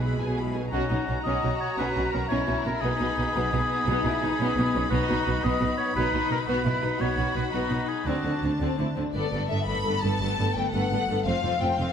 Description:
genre	cinematic, heroic adventure film score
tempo	114 BPM (dotted quarters)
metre	12/8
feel	straight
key	unclear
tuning	A4 = 442 Hz
part	warm symphonic violin section	melody	0.0-11.9 s	D5 to B5	-33 LUFS	left 4 dB	none
part	warm oboe	second line	0.0-8.6 s	F#4 to D#5	-29 LUFS	equal	none
part	warm symphonic violin section	second line	0.0-11.9 s	B3 to C5	-32 LUFS	left 4 dB	none
part	clear symphonic viola section	accompaniment	0.0-11.9 s	G#3 to G#4	-31 LUFS	equal	none
part	clear symphonic cello section	bass	0.0-11.9 s	F2 to D3	-31 LUFS	right 2 dB	none
part	rich symphonic double bass section	bass	0.0-11.9 s	F1 to D2	-30 LUFS	right 2 dB	none
room	wet scoring stage reverb, RT60 1.5 s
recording	none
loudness	-24 LUFS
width	side -8 dB against mid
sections	0.0-9.2 A section; 9.2-11.9 B section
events	none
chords	0.0 E/B; 0.7 F#/B; 2.8 G#m/B; 8.1 D7; 9.2 Gadd9; 11.3 F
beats	0.19 | 0.73 1.26 1.78 2.31 | 2.83 3.35 3.88 4.40 | 4.92 5.44 5.96 6.48 | 7.01 7.54 8.07 8.61 | 9.15 9.68 10.21 10.73 | 11.26 11.79

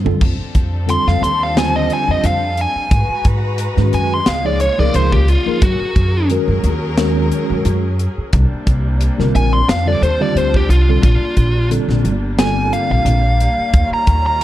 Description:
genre	electric jazz fusion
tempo	89 BPM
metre	4/4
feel	swing 54% on 16ths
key	unclear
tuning	A4 = 439 Hz
part	mellow tine electric piano	accompaniment	0.0-13.2 s	D3 to Db5	-20 LUFS	equal	medium stereo tremolo, wide subtle chorus
part	upright bass	bass	0.0-14.4 s	G1 to Ab2	-16 LUFS	equal	none
part	crisp fusion drum kit	drums	0.1-14.4 s	crash cymbal, hi-hat, kick drum, snare drum, toms	-18 LUFS	equal	none
part	clear studio string section	sustained chords	0.2-14.4 s	Cb3 to Bb5	-26 LUFS	left 2 dB	none
part	biting lead guitar	melody	0.9-14.4 s	F4 to C6	-18 LUFS	equal	overdrive, tape echo
room	light reverb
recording	dark, warm production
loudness	-13 LUFS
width	side -14 dB against mid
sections	0.2-14.4 A section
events	drum fill 0.0; lead electric guitar solo 0.2-14.4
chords	0.2 F13; 2.9 Abm9; 4.3 Db13; 5.6 Gb69; 8.3 Csus2; 9.7 F13; 11.0 Bb6; 13.7 Eb9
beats	| 0.21 0.88 1.56 2.24 | 2.91 3.59 4.27 4.95 | 5.62 6.30 6.97 7.65 | 8.33 9.01 9.68 10.36 | 11.03 11.71 12.38 13.06 | 13.74 14.41

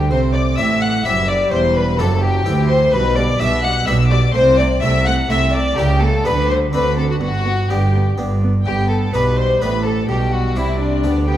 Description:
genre	classical, baroque-style concerto movement with solo episodes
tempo	126 BPM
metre	3/4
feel	straight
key	G major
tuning	A4 = 440 Hz
part	rich chamber violin section	melody	0.0-11.4 s	D5 to F#6	-27 LUFS	left 5 dB	none
part	warm violin	melody	0.0-11.4 s	D4 to F#5	-20 LUFS	left 2 dB	none
part	rich chamber violin section	second line	0.0-11.4 s	D4 to F#5	-23 LUFS	left 2 dB	none
part	dark chamber viola section	accompaniment	0.0-11.4 s	E3 to C4	-26 LUFS	right 2 dB	none
part	harpsichord	accompaniment	0.0-11.4 s	D2 to A4	-28 LUFS	equal	none
part	dark studio double bass section	bass	0.0-11.4 s	E1 to D2	-19 LUFS	right 1 dB	none
part	warm chamber cello section	bass	0.0-11.4 s	D2 to D3	-21 LUFS	right 2 dB	none
room	moderate recital hall reverb, RT60 1.7 s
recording	dark, warm production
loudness	-14 LUFS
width	side -12 dB against mid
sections	0.0-8.7 A section; 8.7-11.4 A section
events	none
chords	0.1 C; 1.5 C/E; 2.9 G/B; 4.4 Am/C; 5.8 C#dim7; 6.3 G/D; 6.7 D7; 7.2 G; 10.1 G/B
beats	| 0.10 0.58 1.05 | 1.52 1.99 2.46 | 2.93 3.40 3.88 | 4.35 4.83 5.30 | 5.78 6.25 6.73 | 7.21 7.70 8.18 | 8.67 9.14 9.62 | 10.10 10.57 11.04

